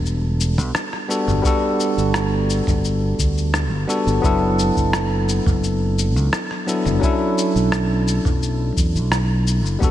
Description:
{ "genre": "sunset chillout", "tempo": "86 BPM", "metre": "4/4", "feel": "straight", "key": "unclear", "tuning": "A4 = 442 Hz", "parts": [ { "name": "bell-like tine electric piano", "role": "accompaniment", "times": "0.0-9.9 s", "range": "F#3 to A4", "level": "-21 LUFS", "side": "moving between left 3 dB and right 3 dB", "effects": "auto-pan, tape echo" }, { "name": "fingered electric bass", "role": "bass", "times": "0.0-9.9 s", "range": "E1 to E2", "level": "-20 LUFS", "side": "equal", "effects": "tube saturation" }, { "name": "dusty soul sampler-style drum kit", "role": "drums", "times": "0.1-9.9 s", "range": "cabasa, rim click, toms", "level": "-26 LUFS", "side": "left 1 dB", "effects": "none" }, { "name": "electronic kick drum", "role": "drums", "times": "1.4-9.9 s", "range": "none", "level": "-21 LUFS", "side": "equal", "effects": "none" } ], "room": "moderate lush hall reverb, RT60 2.8 s", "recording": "dreamy mix soaked in reverb", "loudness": "-17 LUFS", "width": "side -12 dB against mid", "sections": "0.0-9.9 A section", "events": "none", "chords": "0.0 Em11; 1.1 Gmaj9; 4.2 D69/F#", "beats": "0.05 0.75 | 1.45 2.14 2.84 3.54 | 4.24 4.93 5.63 6.33 | 7.03 7.73 8.42 9.12 | 9.82" }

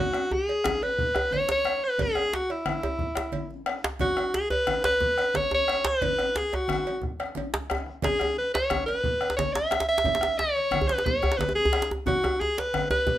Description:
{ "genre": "west african traditional, West African drum ensemble", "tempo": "119 BPM (dotted quarters)", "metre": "12/8", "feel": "straight", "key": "unclear", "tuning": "A4 = 440 Hz", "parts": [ { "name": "bright alto saxophone", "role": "melody", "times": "0.0-13.2 s", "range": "E4 to E5", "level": "-25 LUFS", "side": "equal", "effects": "none" }, { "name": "bombo", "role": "percussion", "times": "0.1-13.2 s", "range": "none", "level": "-32 LUFS", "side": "left 3 dB", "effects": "none" }, { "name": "congas", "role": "percussion", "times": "0.1-13.2 s", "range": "none", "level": "-36 LUFS", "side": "right 3 dB", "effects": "none" }, { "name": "cowbell", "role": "percussion", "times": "0.1-13.1 s", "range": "none", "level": "-38 LUFS", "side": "right 5 dB", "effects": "none" }, { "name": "djembe", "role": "percussion", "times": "0.1-13.1 s", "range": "none", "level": "-38 LUFS", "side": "left 3 dB", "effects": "none" }, { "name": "djembe", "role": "percussion", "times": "0.3-13.2 s", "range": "none", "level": "-30 LUFS", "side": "right 1 dB", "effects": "none" } ], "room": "moderate studio reverb, RT60 0.6 s", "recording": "none", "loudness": "-23 LUFS", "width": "side -13 dB against mid", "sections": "0.0-13.2 A section", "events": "none", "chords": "none", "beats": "0.48 0.98 1.49 | 1.99 2.50 3.00 3.50 | 4.01 4.51 5.01 5.52 | 6.02 6.53 7.03 7.53 | 8.04 8.54 9.04 9.55 | 10.05 10.55 11.06 11.56 | 12.07 12.57 13.07" }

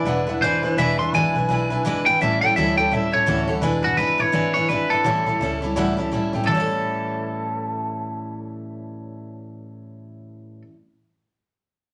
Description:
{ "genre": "rockabilly", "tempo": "168 BPM", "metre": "4/4", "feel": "swing 59% on 8ths", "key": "A mixolydian", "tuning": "A4 = 440 Hz", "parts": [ { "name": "electric guitar at the edge of break-up", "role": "melody", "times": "0.0-10.6 s", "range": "F#4 to C6", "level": "-24 LUFS", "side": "equal", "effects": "none" }, { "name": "picked steel-string acoustic guitar", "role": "accompaniment", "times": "0.0-10.8 s", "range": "A2 to B4", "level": "-27 LUFS", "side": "equal", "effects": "none" }, { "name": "warm double bass", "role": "bass", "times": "0.0-10.1 s", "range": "E1 to D2", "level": "-30 LUFS", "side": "equal", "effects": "none" }, { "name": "tack piano", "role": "accompaniment", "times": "0.1-10.7 s", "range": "B4 to B5", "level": "-32 LUFS", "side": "equal", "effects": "none" } ], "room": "wet club reverb, RT60 0.8 s", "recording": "none", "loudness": "-21 LUFS", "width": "mono", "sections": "0.0-3.6 A section; 3.6-6.5 B section; 6.5-9.3 C section", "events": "none", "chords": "0.0 E7; 2.2 A7; 3.6 E7; 5.1 A7", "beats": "0.07 0.42 | 0.78 1.14 1.49 1.85 | 2.20 2.56 2.92 3.27 | 3.63 3.99 4.34 4.70 | 5.06 5.41 5.77 6.13 | 6.48 6.84 7.20 7.55 | 7.91 8.26 8.62 8.98" }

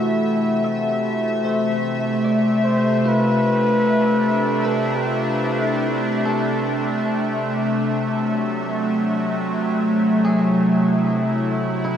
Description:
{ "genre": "ambient", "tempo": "75 BPM", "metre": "4/4", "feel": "straight", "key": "unclear", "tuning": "A4 = 435 Hz", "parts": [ { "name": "warm flugelhorn", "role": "melody", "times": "0.0-6.3 s", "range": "E4 to C5", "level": "-26 LUFS", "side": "left 1 dB", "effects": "tape echo" }, { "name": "evolving wavetable pad", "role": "sustained chords", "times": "0.0-12.0 s", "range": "C3 to E5", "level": "-20 LUFS", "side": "equal", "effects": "chorus, built-in reverb" }, { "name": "bowed-like drone", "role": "drone", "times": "0.1-12.0 s", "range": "A3", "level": "-26 LUFS", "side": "right 1 dB", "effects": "built-in reverb" }, { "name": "dark studio violin section", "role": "texture", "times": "0.0-12.0 s", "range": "E5", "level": "-28 LUFS", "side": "left 3 dB", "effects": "none" }, { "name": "clean electric guitar", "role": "arpeggios", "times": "0.6-12.0 s", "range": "E4 to E5", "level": "-34 LUFS", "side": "equal", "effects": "tape echo" } ], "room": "wet cathedral reverb, RT60 6.8 s", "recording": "in a vast, echoing space", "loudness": "-18 LUFS", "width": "side -9 dB against mid", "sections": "0.0-12.0 A section", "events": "fade-in on clean electric guitar 0.0-12.0", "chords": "0.0 Am6; 1.5 F6; 7.9 Am6", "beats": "0.65 | 1.45 2.25 3.05 3.85 | 4.65 5.45 6.25 7.05 | 7.85 8.65 9.45 10.25 | 11.05 11.85" }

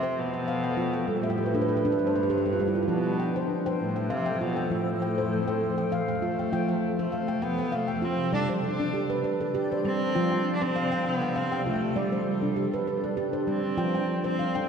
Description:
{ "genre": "world meditative, meditative tuned percussion", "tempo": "99 BPM", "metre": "3/4", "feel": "swing 54% on 16ths", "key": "F lydian", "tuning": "A4 = 440 Hz", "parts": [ { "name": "rich cello", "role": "melody", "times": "0.0-14.7 s", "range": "G2 to D4", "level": "-30 LUFS", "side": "left 1 dB", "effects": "shimmer reverb, tape echo" }, { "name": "granular cloud pad", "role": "sustained chords", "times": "0.1-14.7 s", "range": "C3 to D5", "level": "-31 LUFS", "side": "left 1 dB", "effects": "built-in reverb" }, { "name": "handpan", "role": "arpeggios", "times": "0.0-14.7 s", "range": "F3 to G5", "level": "-28 LUFS", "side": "right 1 dB", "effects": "shimmer reverb, tape echo" } ], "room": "wet lush hall reverb, RT60 2.8 s", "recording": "dreamy mix soaked in reverb", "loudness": "-25 LUFS", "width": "side -6 dB against mid", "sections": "0.0-6.5 A section; 6.5-14.7 B section", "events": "handpan fill 1.2-2.9", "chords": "0.0 F; 1.1 G; 2.9 F; 8.3 G; 10.2 F; 12.0 G; 13.8 F", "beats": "0.47 | 1.08 1.68 2.29 | 2.89 3.50 4.10 | 4.70 5.31 5.91 | 6.52 7.12 7.73 | 8.34 8.94 9.55 | 10.15 10.76 11.36 | 11.97 12.57 13.18 | 13.78 14.39" }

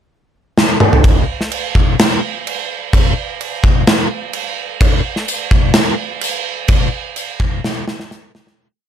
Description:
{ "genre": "rock", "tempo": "127 BPM", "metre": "4/4", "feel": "straight", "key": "none", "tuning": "none", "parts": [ { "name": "gated 80s drum kit", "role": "drums", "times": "0.6-8.6 s", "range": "crash cymbal, kick drum, snare drum, toms", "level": "-13 LUFS", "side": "equal", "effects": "none" }, { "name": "tambourine", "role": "percussion", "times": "5.3-8.2 s", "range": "none", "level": "-24 LUFS", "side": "left 8 dB", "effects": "none" } ], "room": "little or no reverb", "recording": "none", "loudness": "-13 LUFS", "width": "side -9 dB against mid", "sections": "0.0-1.0 pickup bar; 1.0-8.6 verse", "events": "drum fill 0.6-1.0, 7.6-8.6; fade-out 6.7-8.6", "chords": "none", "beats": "0.10 0.58 | 1.05 1.52 1.99 2.46 | 2.93 3.40 3.88 4.35 | 4.82 5.29 5.76 6.23 | 6.70 7.17 7.64 8.12" }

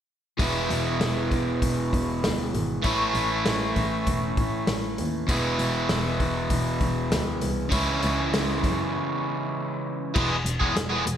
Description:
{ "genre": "indie rock", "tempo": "98 BPM", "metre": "4/4", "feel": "straight", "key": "E major", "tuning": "A4 = 440 Hz", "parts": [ { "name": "crunchy overdriven guitar", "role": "riff", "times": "0.4-11.1 s", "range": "E2 to G#4", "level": "-25 LUFS", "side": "equal", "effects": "none" }, { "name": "warm double bass", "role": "bass", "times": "0.4-11.2 s", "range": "E1 to A2", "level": "-30 LUFS", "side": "equal", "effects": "none" }, { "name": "vintage drum kit", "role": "drums", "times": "0.4-11.2 s", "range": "crash cymbal, hi-hat, kick drum, snare drum", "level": "-28 LUFS", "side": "equal", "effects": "gated reverb" } ], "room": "moderate plate reverb, RT60 1.6 s, studio reverb", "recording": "bright 1980s-style digital production", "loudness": "-23 LUFS", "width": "side -9 dB against mid", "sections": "0.4-10.2 A section; 10.2-11.2 B section", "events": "break 8.9-10.2", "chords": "0.4 E; 2.8 A; 5.3 E; 7.7 C#m; 10.2 E", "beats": "| 0.39 1.00 1.61 2.23 | 2.84 3.45 4.06 4.67 | 5.28 5.89 6.50 7.11 | 7.72 8.33 8.94 9.55 | 10.15 10.76" }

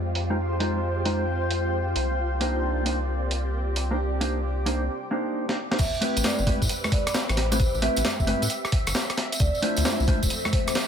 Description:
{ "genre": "UK garage, two-step garage", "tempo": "133 BPM", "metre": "4/4", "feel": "swing 66% on 16ths", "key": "A minor", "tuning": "A4 = 439 Hz", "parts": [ { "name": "soft string machine", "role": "sustained chords", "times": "0.0-10.9 s", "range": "F3 to E5", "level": "-34 LUFS", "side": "left 1 dB", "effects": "phaser, ensemble chorus, sidechain pumping" }, { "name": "rubbery square bass", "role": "bass", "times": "0.0-10.3 s", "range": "D1 to A2", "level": "-27 LUFS", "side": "equal", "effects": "tube saturation" }, { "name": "granular cloud pad", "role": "texture", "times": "0.0-4.9 s", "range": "C4 to G5", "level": "-31 LUFS", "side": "equal", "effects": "built-in reverb, sidechain pumping" }, { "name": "breakbeat sampler-style drum kit", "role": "drums", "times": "0.2-10.9 s", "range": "congas, crash cymbal, hi-hat, rim click, snare drum", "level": "-28 LUFS", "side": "right 1 dB", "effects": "none" }, { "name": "mellow electric guitar", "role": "stabs", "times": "0.3-10.2 s", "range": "Ab3 to C5", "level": "-28 LUFS", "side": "equal", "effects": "low-pass filter, digital delay" }, { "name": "vibraphone with soft mallets", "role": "melody", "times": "5.8-10.8 s", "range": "C5 to E5", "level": "-31 LUFS", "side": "right 2 dB", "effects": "tape echo" }, { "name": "electronic kick drum", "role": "drums", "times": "5.8-10.6 s", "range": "none", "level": "-25 LUFS", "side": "equal", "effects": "none" }, { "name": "tambourine", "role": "percussion", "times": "5.8-10.9 s", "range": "none", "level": "-32 LUFS", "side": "right 1 dB", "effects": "none" } ], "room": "light reverb", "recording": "low-pass filter", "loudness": "-23 LUFS", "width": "side -8 dB against mid", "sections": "0.0-5.8 A section; 5.8-10.9 B section", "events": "filter sweep on drum 0.0-5.8; filter sweep on string machine 0.0-5.8; drum fill 5.5-5.8; drop 5.8-10.9", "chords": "0.0 Fm7; 2.0 Cm7; 5.8 Am7; 9.2 Dm7", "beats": "| 0.38 0.83 1.28 1.73 | 2.18 2.63 3.08 3.54 | 3.99 4.44 4.89 5.34 | 5.79 6.24 6.69 7.14 | 7.60 8.05 8.50 8.95 | 9.40 9.85 10.30 10.75" }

